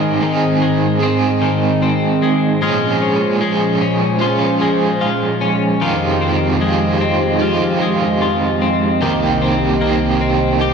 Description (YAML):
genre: dream pop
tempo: 75 BPM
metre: 4/4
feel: straight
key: unclear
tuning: A4 = 439 Hz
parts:
  - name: overdriven electric guitar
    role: accompaniment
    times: 0.0-10.7 s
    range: F2 to Ab4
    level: -18 LUFS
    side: right 5 dB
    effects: tremolo, wide subtle chorus
  - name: hollow soft pad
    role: sustained chords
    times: 0.0-10.7 s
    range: C2 to Eb5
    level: -18 LUFS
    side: right 1 dB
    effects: chorus
  - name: twelve-string electric guitar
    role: arpeggios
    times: 0.0-10.7 s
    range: Eb3 to G4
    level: -18 LUFS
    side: left 5 dB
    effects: wide subtle chorus, digital delay
room: moderate lush hall reverb, RT60 1.7 s, digital ambience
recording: dark, warm production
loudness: -14 LUFS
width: side -6 dB against mid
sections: 0.0-10.7 A section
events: none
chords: 0.0 Ab; 2.6 Bbm7; 5.8 Fm7; 9.0 Cm7